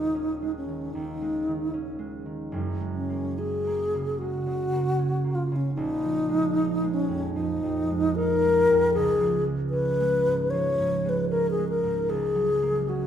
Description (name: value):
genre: classical, impressionist duo for alto flute and harp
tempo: 76 BPM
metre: 4/4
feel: rubato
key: unclear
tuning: A4 = 440 Hz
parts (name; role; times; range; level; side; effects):
- mellow wooden-headed alto flute; melody; 0.0-13.1 s; Db4 to Db5; -24 LUFS; left 2 dB; none
- concert harp; accompaniment; 0.0-13.1 s; Eb1 to Eb4; -28 LUFS; right 3 dB; none
room: wet recital hall reverb, RT60 1.6 s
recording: recorded in a church or concert hall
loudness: -23 LUFS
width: side -9 dB against mid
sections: 0.0-13.1 A section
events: none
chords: 0.0 Dbsus2/Eb; 2.5 Gbadd9; 5.8 Bb7sus4; 9.0 Db9; 12.1 Gbmaj7/Db